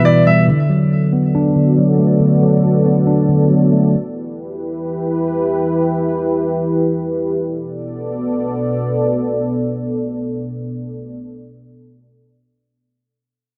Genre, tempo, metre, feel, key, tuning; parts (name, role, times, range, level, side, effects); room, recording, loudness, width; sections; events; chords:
hip hop; 139 BPM; 4/4; half-time; B minor; A4 = 440 Hz
mellow tine electric piano; accompaniment; 0.0-4.0 s; B2 to B4; -15 LUFS; equal
dark analog pad; sustained chords; 0.0-11.2 s; B2 to D5; -21 LUFS; equal; chorus
light reverb; dark, warm production; -16 LUFS; mono
0.0-7.4 A section; 7.4-10.8 B section
0.5 Bm7; 3.9 Em; 7.4 Bm7